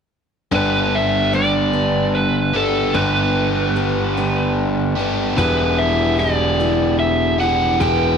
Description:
rock; 49 BPM (dotted quarters); 6/8; straight; G major; A4 = 441 Hz
picked twelve-string acoustic guitar; accompaniment; 0.5-8.2 s; E2 to G4; -24 LUFS; left 6 dB
biting overdriven guitar; riff; 0.5-8.2 s; E2 to G4; -21 LUFS; right 2 dB
bright concert grand piano; bass; 0.5-8.2 s; E1 to G1; -21 LUFS; equal
overdriven slide guitar; melody; 0.6-8.2 s; A4 to G5; -20 LUFS; right 1 dB
small room ambience; dry, close 1970s-style studio recording; -15 LUFS; side -6 dB against mid
0.5-8.2 A section
0.5 G; 5.4 Em

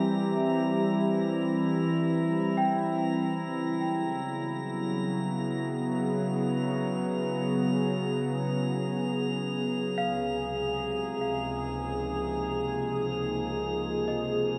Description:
ambient; free time; A4 = 440 Hz
warbly tape-like pad; sustained chords; 0.0-14.6 s; Db2 to G#4; -30 LUFS; equal; chorus, built-in reverb
large celesta; arpeggios; 0.0-3.8, 10.0-14.6 s; Eb5 to G5; -39 LUFS; equal; tape echo
drifting glass-harmonics texture; texture; 0.0-14.6 s; Bb5; -41 LUFS; equal; chorus, built-in reverb
wet huge ambient reverb, RT60 7.2 s; -29 LUFS; mono
0.0-14.6 A section
fade-in on synth texture 0.0-14.6
0.0 C; 3.4 Eadd9; 10.0 Db

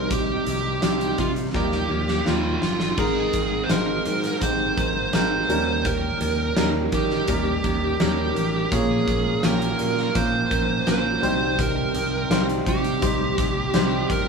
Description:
piano-driven pop; 84 BPM; 4/4; straight; Ab major; A4 = 439 Hz
fuzz lead guitar; melody; 0.0-14.3 s; F4 to C5; -25 LUFS; right 3 dB; distortion, digital delay
clear upright piano; accompaniment; 0.0-14.3 s; Ab2 to Db5; -26 LUFS; left 1 dB
tonewheel organ; sustained chords; 0.0-3.0 s; C3 to F4; -34 LUFS; right 4 dB
modern bright picked electric bass; bass; 0.0-14.3 s; G1 to Eb3; -28 LUFS; left 1 dB
huge arena drum kit; drums; 0.1-14.3 s; crash cymbal, hi-hat, kick drum, snare drum; -26 LUFS; equal
fingerpicked steel-string acoustic guitar; riff; 3.0-14.3 s; Bb2 to Bb4; -30 LUFS; right 5 dB
moderate studio ambience, RT60 0.5 s; band playing live in one room, small room ambience; -20 LUFS; side -5 dB against mid
0.0-3.0 A section; 3.0-14.3 B section
drum fill 1.5-3.0
0.0 Cm; 1.5 Ebadd9; 3.0 Abadd9; 5.5 Eb7; 8.7 Bbm; 11.2 Cm

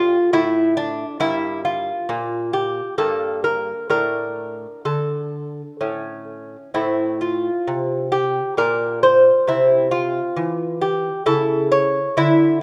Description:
classical, baroque-style dance for lute; 66 BPM; 3/4; uneven beats, rubato; D minor, F major from 6.7 s; A4 = 440 Hz
lute; solo; 0.0-12.6 s; G2 to C#5; -20 LUFS; equal
light reverb; -20 LUFS; mono
0.0-12.6 A section
0.0 Fmaj13; 1.2 Gm; 3.9 D5/A; 5.8 A; 6.7 F/A; 8.6 Bbadd9; 9.5 C; 11.3 A/C#

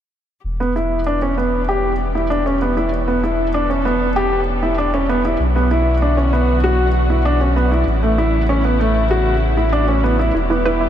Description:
piano and strings electronica; 97 BPM; 4/4; straight; E dorian; A4 = 440 Hz
warm sub bass; bass; 0.4-10.9 s; E1 to B1; -19 LUFS; equal
muted chamber string section; sustained chords; 0.5-10.9 s; C#3 to A4; -29 LUFS; left 2 dB; shimmer reverb
warm upright piano; riff; 0.6-10.9 s; A3 to G4; -17 LUFS; equal; tape echo, shimmer reverb
analog pluck; arpeggios; 10.3-10.9 s; E4 to B4; -20 LUFS; right 4 dB; chorus, tape echo
moderate huge ambient reverb, RT60 8.0 s; dreamy mix soaked in reverb; -15 LUFS; side -10 dB against mid
0.5-10.9 A section
fade-in on string section 0.5-10.9
0.5 Em; 5.4 Bm; 7.9 A; 10.3 Em

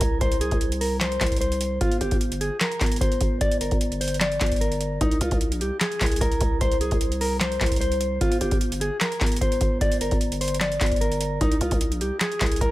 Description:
hip hop, trap; 150 BPM; 4/4; half-time; A4 = 440 Hz
mellow electric guitar; melody; 0.0-12.7 s; Eb4 to D5; -26 LUFS; equal; spring reverb, low-pass filter
growling 808-style bass; bass; 0.0-12.7 s; G1 to C2; -27 LUFS; equal
booming analog drum machine; drums; 0.0-12.7 s; handclaps, hi-hat, kick drum, snare drum; -24 LUFS; equal
digital ambience; -21 LUFS; side -16 dB against mid
0.0-12.7 A section
0.0 N.C.; 1.8 Gm; 5.0 N.C.; 8.2 Gm; 11.4 Bb7sus2 (rootless)

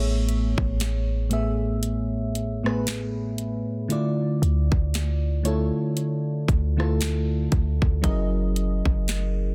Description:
contemporary R&B; 58 BPM; 4/4; swing 58% on 16ths; A major; A4 = 440 Hz
mellow FM electric piano; accompaniment; 0.0-9.5 s; A2 to E5; -28 LUFS; equal; chorus
warm 808-style bass; bass; 0.0-9.5 s; F#1 to D2; -27 LUFS; equal
glassy wavetable pluck; texture; 0.0-9.4 s; C#5 to E5; -43 LUFS; equal; chorus, delay
trap drum kit; drums; 0.3-9.4 s; hi-hat, kick drum, rim click, snare drum; -29 LUFS; equal
digital ambience; dense, heavily limited modern master; -25 LUFS; mono
0.0-9.5 A section
0.0 Amaj9; 3.9 Dmadd9; 8.0 F#13

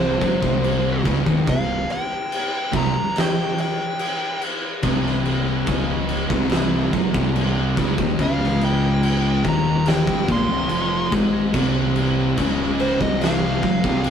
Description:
stoner and doom metal; 72 BPM; 4/4; straight; A4 = 439 Hz
fuzz lead guitar; melody; 0.0-14.1 s; C5 to C6; -25 LUFS; right 1 dB; distortion
fuzz guitar; riff; 0.0-14.1 s; C2 to Bb3; -25 LUFS; equal; distortion
thick fuzz guitar; riff; 0.0-14.1 s; C2 to Bb3; -24 LUFS; left 6 dB; distortion
thick fuzz guitar; riff; 0.0-14.1 s; C2 to Bb3; -26 LUFS; right 6 dB; distortion
growling fingered electric bass; bass; 0.0-14.1 s; C1 to Bb1; -30 LUFS; equal; overdrive
oversized low-tuned drum kit; drums; 0.2-14.1 s; crash cymbal, kick drum, snare drum; -23 LUFS; equal
moderate stone room reverb, RT60 1.1 s; rough rehearsal-room recording, tube saturation; -18 LUFS; side -8 dB against mid
0.0-14.1 A section
lead electric guitar solo 0.0-14.1
0.0 Cm

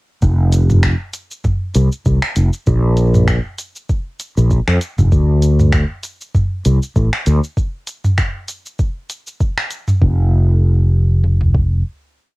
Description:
sunset chillout; 98 BPM; 4/4; swing 56% on 16ths; F major; A4 = 442 Hz
fretless electric bass; bass; 0.2-11.8 s; F1 to F2; -12 LUFS; equal; wide subtle chorus
smooth R&B drum kit; drums; 0.2-11.7 s; kick drum, toms; -17 LUFS; equal; cassette tape
smooth R&B drum kit; drums; 0.2-10.0 s; finger snaps, hi-hat, shaker, toms; -19 LUFS; equal; cassette tape
little or no reverb; home recording on cassette; -13 LUFS; side -21 dB against mid
0.2-10.0 groove; 10.0-12.4 final note

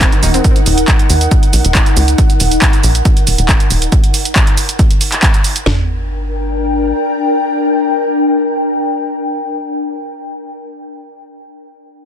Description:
driving peak-time techno; 138 BPM; 4/4; straight; G harmonic minor; A4 = 443 Hz
tight sequencer bass; bass; 0.0-6.9 s; Eb1 to Eb2; -15 LUFS; equal; tube saturation, sidechain pumping
punchy analog drum machine; drums; 0.0-5.6 s; handclaps, hi-hat, shaker; -16 LUFS; right 1 dB; sidechain pumping on hats, sidechain pumping on perc
techno drum kit; drums; 0.0-5.8 s; kick drum, snare drum, toms; -12 LUFS; equal
ethereal airy pad; texture; 0.0-9.9 s; D4 to G5; -17 LUFS; left 2 dB; ensemble chorus, built-in reverb, sidechain pumping
little or no reverb; dense, heavily limited modern master; -10 LUFS; side -9 dB against mid
0.0-5.7 A section; 5.7-9.1 B section
drop 0.0-5.7
0.0 Ebm; 5.7 Gm

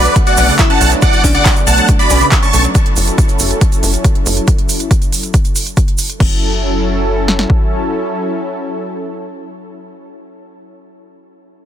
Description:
uplifting trance; 139 BPM; 4/4; straight; F# minor; A4 = 440 Hz
big supersaw lead; melody; 0.0-2.6 s; B4 to C#6; -16 LUFS; right 1 dB; phaser, cassette tape, sidechain pumping, dub echo
glassy synth bell; second line; 0.0-2.7 s; D4 to F#5; -23 LUFS; left 4 dB; chorus, ping-pong delay
plucky unison lead; second line; 0.0-2.6 s; D5 to C#6; -23 LUFS; equal; lush chorus, vintage 12-bit sampler grit, sidechain pumping, ping-pong delay
lush unison pad; sustained chords; 0.0-10.4 s; F#3 to A4; -21 LUFS; equal; chorus, sidechain pumping
tight sequencer bass; bass; 0.0-7.5 s; F#1 to B1; -16 LUFS; equal; sidechain pumping
analog pluck; arpeggios; 0.1-2.7 s; C#3 to F#4; -22 LUFS; right 3 dB; chorus, sidechain pumping, ping-pong delay
big-room dance drum kit; drums; 0.1-6.3 s; crash cymbal, handclaps, hi-hat; -20 LUFS; right 2 dB
egg shaker; percussion; 0.1-6.2 s; -22 LUFS; right 5 dB
punchy analog drum machine; drums; 0.2-7.6 s; kick drum, snare drum; -13 LUFS; equal; overdrive
digital ambience; dense, heavily limited modern master; -10 LUFS; side -10 dB against mid
0.0-2.8 A section; 2.8-6.2 B section; 6.2-9.7 C section
drop 0.0-2.8; filter sweep on analog synth pad 2.8-6.2
0.0 Bm7; 2.8 F#m7

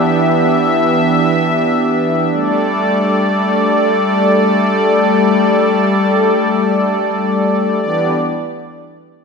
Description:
synthwave; free time; E minor; A4 = 440 Hz
warm analog pad; sustained chords; 0.0-8.2 s; E3 to E5; -12 LUFS; equal; chorus
wet lush hall reverb, RT60 1.5 s; bright 1980s-style digital production; -12 LUFS; side -5 dB against mid
0.0-7.8 A section; 7.8-9.2 B section
0.0 Em7; 2.3 Dsus4; 7.8 Em7

